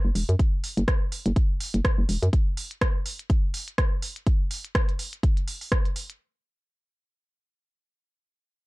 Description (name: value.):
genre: minimal techno.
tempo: 124 BPM.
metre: 4/4.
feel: swing 57% on 16ths.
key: unclear.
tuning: A4 = 440 Hz.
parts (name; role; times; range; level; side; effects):
hollow knocking FM bass; bass; 0.0-2.3 s; E1 to F#2; -23 LUFS; equal; tube saturation, sidechain pumping.
minimal click drum kit; drums; 0.2-6.2 s; hi-hat, rim click; -31 LUFS; right 1 dB; none.
electronic kick drum; drums; 0.4-5.8 s; none; -23 LUFS; equal; none.
room: little or no reverb.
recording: dark, warm production.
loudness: -23 LUFS.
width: side -21 dB against mid.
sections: 0.0-6.2 A section.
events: drop 0.0-6.2.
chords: none.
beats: | 0.39 0.88 1.36 1.85 | 2.33 2.81 3.30 3.78 | 4.26 4.75 5.23 5.72.